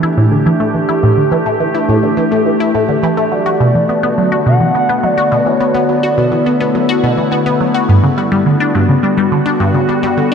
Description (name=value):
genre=ambient, sequencer-driven space music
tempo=105 BPM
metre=4/4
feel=straight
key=B minor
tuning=A4 = 440 Hz
part: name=evolving wavetable pad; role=sustained chords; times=0.0-10.3 s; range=D3 to G4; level=-15 LUFS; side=left 1 dB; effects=chorus, built-in reverb
part: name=resonant blip pluck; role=riff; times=0.0-10.3 s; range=G2 to F#4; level=-13 LUFS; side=equal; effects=phaser, ping-pong delay
part: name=expressive portamento lead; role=melody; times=3.3-6.5 s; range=C#5 to F#5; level=-17 LUFS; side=right 1 dB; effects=chorus, ping-pong delay
room=wet lush hall reverb, RT60 2.8 s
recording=cassette tape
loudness=-11 LUFS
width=side -6 dB against mid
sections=0.0-10.3 A section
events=none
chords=0.0 A7sus4; 3.3 Bm7; 7.9 Gmaj7